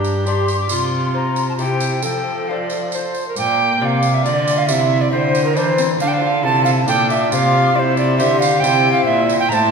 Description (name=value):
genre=classical, renaissance-style consort dance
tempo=137 BPM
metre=3/4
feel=straight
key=unclear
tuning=A4 = 441 Hz
part: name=tenor recorder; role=second line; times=0.0-9.7 s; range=D4 to Bb5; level=-18 LUFS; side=right 4 dB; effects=none
part: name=lute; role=accompaniment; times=0.0-9.7 s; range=G2 to D5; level=-24 LUFS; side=left 4 dB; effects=none
part: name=warm viola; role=accompaniment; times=0.0-9.7 s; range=Bb3 to A4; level=-24 LUFS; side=left 3 dB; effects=none
part: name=rich cello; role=bass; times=0.0-9.7 s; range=G2 to F3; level=-20 LUFS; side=equal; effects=none
part: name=tambourine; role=percussion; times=0.0-9.7 s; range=none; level=-30 LUFS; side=right 5 dB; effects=none
part: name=silver concert flute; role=melody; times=0.3-9.7 s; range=F5 to D6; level=-26 LUFS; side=left 5 dB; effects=none
room=wet concert hall reverb, RT60 2.1 s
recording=recorded in a church or concert hall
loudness=-14 LUFS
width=side -5 dB against mid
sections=0.0-3.4 A section; 3.4-9.7 A section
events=none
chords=0.0 G5; 0.7 Csus4; 1.6 C; 2.0 F; 3.4 Bb; 4.7 C; 6.0 Dm; 7.3 Csus4; 7.8 C